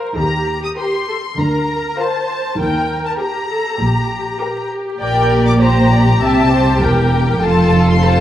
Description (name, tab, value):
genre	quick classical-period movement for string orchestra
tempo	99 BPM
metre	4/4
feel	straight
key	F major from 5.0 s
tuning	A4 = 442 Hz
part	clear symphonic violin section	second line	0.0-8.2 s	F4 to Bb4	-20 LUFS	left 2 dB	none
part	clear symphonic viola section	accompaniment	0.0-8.2 s	G4 to E5	-21 LUFS	right 1 dB	none
part	rich symphonic violin section	melody	0.2-8.2 s	G5 to Eb6	-20 LUFS	left 3 dB	none
part	warm symphonic cello section	bass	0.2-8.2 s	E2 to Eb3	-18 LUFS	right 2 dB	none
part	warm symphonic double bass section	bass	0.2-8.2 s	E1 to Eb2	-17 LUFS	right 1 dB	none
room	moderate scoring stage reverb, RT60 1.7 s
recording	dark, warm production, vinyl crackle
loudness	-13 LUFS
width	side -12 dB against mid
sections	0.0-8.2 A section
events	none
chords	0.2 Eb; 1.4 Bb/D; 2.6 Eb; 5.0 Gm/Bb; 6.2 C7; 7.4 F